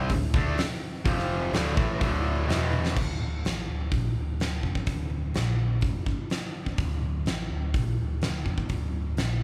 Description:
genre	hard rock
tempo	126 BPM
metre	4/4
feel	straight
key	D minor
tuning	A4 = 440 Hz
part	cranked stack guitar	riff	0.0-3.0 s	D2 to D4	-31 LUFS	equal	overdrive
part	overdriven picked electric bass	bass	0.0-9.4 s	D1 to D2	-32 LUFS	equal	none
part	huge arena drum kit	drums	0.1-9.3 s	crash cymbal, hi-hat, kick drum, snare drum, toms	-31 LUFS	equal	none
room	moderate large studio reverb, RT60 1.3 s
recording	band playing live in one room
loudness	-28 LUFS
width	mono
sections	0.0-3.0 A section; 3.0-9.4 B section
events	drum fill 2.7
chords	0.0 D5; 1.1 F5; 1.5 D5; 2.5 E5; 3.0 N.C.; 5.8 Dm

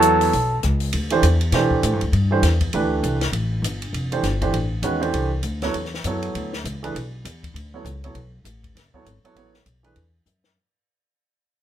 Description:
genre	modal jazz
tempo	199 BPM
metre	4/4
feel	swing 60% on 8ths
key	unclear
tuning	A4 = 440 Hz
part	breathy trumpet	melody	0.0-0.6 s	A4	-18 LUFS	right 1 dB	none
part	warm grand piano	accompaniment	0.0-10.0 s	Eb3 to C#5	-22 LUFS	right 4 dB	none
part	upright bass	bass	0.0-10.6 s	F1 to B2	-22 LUFS	left 1 dB	none
part	compact cocktail drum kit	drums	0.0-10.5 s	hi-hat, kick drum, ride cymbal, rim click, snare drum	-30 LUFS	left 2 dB	none
room	moderate club reverb, RT60 0.6 s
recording	minimal, uncompressed stereo recording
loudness	-19 LUFS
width	side -11 dB against mid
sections	0.9-10.6 A section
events	fade-out 0.9-10.6; drum fill 10.3-10.6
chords	0.0 Esus4; 0.9 D9sus4; 5.7 E9sus4

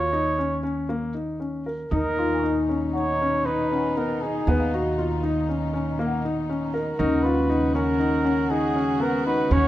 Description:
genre	contemporary instrumental, chamber music in an uneven meter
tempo	119 BPM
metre	5/4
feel	straight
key	unclear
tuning	A4 = 440 Hz
part	mellow flugelhorn	melody	0.0-9.7 s	Ab4 to Db5	-26 LUFS	right 2 dB	none
part	dark grand piano	arpeggios	0.0-9.7 s	Bb3 to Bb4	-26 LUFS	left 2 dB	none
part	upright bass	bass	0.0-9.7 s	Eb2	-28 LUFS	right 2 dB	none
part	vibraphone with soft mallets	second line	1.9-9.7 s	Db4 to D#4	-28 LUFS	left 2 dB	none
part	warm chamber string section	sustained chords	1.9-9.7 s	A#2 to F#4	-33 LUFS	left 1 dB	none
part	celesta	texture	2.3-7.2 s	D#5 to Db6	-37 LUFS	left 3 dB	none
room	light reverb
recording	none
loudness	-22 LUFS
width	side -14 dB against mid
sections	0.0-9.7 A section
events	none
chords	0.0 Eb7(no3); 1.9 Bmaj7/D#

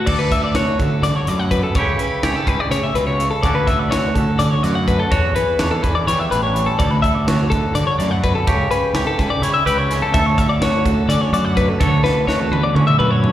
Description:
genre	math rock and midwest emo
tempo	251 BPM (eighths)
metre	7/8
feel	straight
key	D major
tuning	A4 = 440 Hz
part	twangy electric guitar	accompaniment	0.0-13.3 s	D2 to A4	-21 LUFS	right 4 dB	slapback echo
part	twelve-string electric guitar	arpeggios	0.0-13.3 s	A4 to F#5	-20 LUFS	left 4 dB	slapback echo
part	fuzz fingered electric bass	bass	0.1-13.3 s	A1 to E3	-21 LUFS	equal	overdrive
part	crisp fusion drum kit	drums	0.1-13.3 s	crash cymbal, hi-hat, kick drum, snare drum, toms	-22 LUFS	equal	none
room	light reverb, studio reverb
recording	live gig heard through the venue's PA, recital hall reverb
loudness	-15 LUFS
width	side -12 dB against mid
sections	0.1-13.3 A section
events	drum fill 12.0-13.3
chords	0.1 Dmaj7; 1.8 A9/C#; 3.4 Dmaj7; 5.1 Em9; 6.8 Dmaj7; 8.5 A9/C#; 10.1 Dmaj7

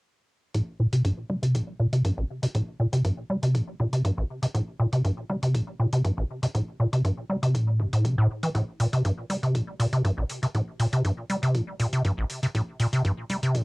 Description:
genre	acid house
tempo	120 BPM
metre	4/4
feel	straight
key	A phrygian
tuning	A4 = 441 Hz
part	acid bass, square	riff	0.5-13.6 s	A1 to G3	-23 LUFS	equal	analog delay
part	electronic hi-hat	drums	0.5-13.6 s	none	-39 LUFS	equal	cassette tape
part	electronic kick drum	drums	0.5-13.6 s	none	-36 LUFS	equal	high-pass filter on kick, cassette tape, high-pass filter on room
room	moderate booth ambience, RT60 0.2 s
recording	home recording on cassette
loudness	-24 LUFS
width	side -26 dB against mid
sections	0.5-13.6 A section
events	filter sweep on acid bass 0.5-13.6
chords	none

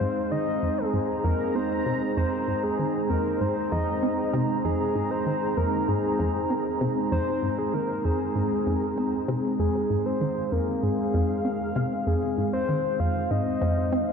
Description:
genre	ambient, sequencer-driven space music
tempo	97 BPM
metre	4/4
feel	straight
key	F minor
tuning	A4 = 440 Hz
part	soft octave-layered synth lead	melody	0.0-14.1 s	Ab4 to F5	-29 LUFS	left 2 dB	chorus, ping-pong delay
part	sweeping resonant pad	sustained chords	0.0-14.1 s	Ab3 to Bb5	-27 LUFS	right 1 dB	chorus
part	resonant blip pluck	riff	0.0-14.1 s	F2 to C4	-28 LUFS	equal	chorus, ping-pong delay
room	wet huge ambient reverb, RT60 8.2 s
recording	dark, warm production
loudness	-23 LUFS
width	side -6 dB against mid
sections	0.0-14.1 A section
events	filter sweep on synth arpeggio sound 0.0-14.1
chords	0.0 Fm7

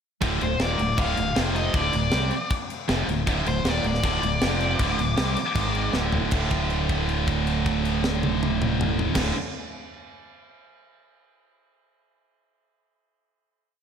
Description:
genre	heavy metal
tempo	157 BPM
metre	4/4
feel	straight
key	D phrygian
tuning	A4 = 440 Hz
part	high-gain distorted guitar	riff	0.2-9.3 s	D2 to C4	-28 LUFS	right 10 dB	distortion
part	scooped high-gain guitar	riff	0.2-9.3 s	D2 to C4	-30 LUFS	left 8 dB	distortion, slapback echo
part	growling fingered electric bass	bass	0.2-9.3 s	D1 to C2	-28 LUFS	equal	overdrive
part	tight metal drum kit	drums	0.2-9.2 s	crash cymbal, kick drum, snare drum, toms	-28 LUFS	left 1 dB	none
part	high-gain lead guitar	melody	0.4-5.9 s	C5 to F5	-28 LUFS	left 4 dB	distortion
room	moderate recital hall reverb, RT60 1.6 s, small room ambience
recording	big arena sound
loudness	-22 LUFS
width	side -7 dB against mid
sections	0.2-6.3 riff; 6.3-9.4 final chord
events	drum fill 5.9-6.3; held note 6.3-9.2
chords	0.2 Dm; 1.4 F5; 1.7 Dm; 4.4 F5; 4.8 D5; 5.6 G#5; 5.9 D5

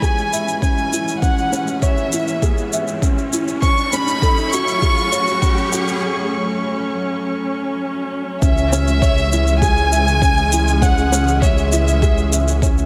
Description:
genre	piano and strings electronica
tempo	100 BPM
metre	4/4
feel	straight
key	C# minor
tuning	A4 = 440 Hz
part	warm chamber violin section	melody	0.0-12.6 s	E5 to C#6	-23 LUFS	equal	none
part	muted studio string section	sustained chords	0.0-12.9 s	E3 to C#4	-27 LUFS	equal	none
part	felt-muted upright piano	riff	0.0-12.9 s	C#4 to E5	-26 LUFS	equal	none
part	electronic kick drum	drums	0.0-12.7 s	none	-20 LUFS	equal	none
part	shaker	drums	0.0-12.9 s	none	-28 LUFS	equal	high-pass filter on perc, high-pass filter on room
part	riser	sound effects	1.7-6.0 s	none	-32 LUFS	equal	none
part	dark detuned saw bass	bass	8.4-12.9 s	C#2	-20 LUFS	equal	sidechain pumping
room	light reverb, small room reverb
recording	none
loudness	-17 LUFS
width	mono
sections	0.0-8.4 A section; 8.4-12.9 B section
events	build-up 0.0-8.4; riser 1.7-6.0; break 6.0-8.4; drop 8.4-12.9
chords	0.0 C#m; 3.6 F#madd9; 8.4 C#m

